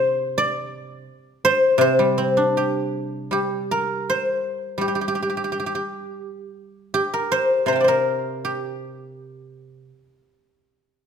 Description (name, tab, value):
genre	chinese traditional, Chinese solo plucked strings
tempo	79-86 BPM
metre	2/4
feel	rubato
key	C shang mode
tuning	A4 = 442 Hz
part	guzheng	solo	0.0-10.8 s	C3 to C6	-20 LUFS	equal	none
room	light reverb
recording	minimal, uncompressed stereo recording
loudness	-19 LUFS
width	side -7 dB against mid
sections	0.0-3.3 A section; 3.3-11.1 B section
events	none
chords	none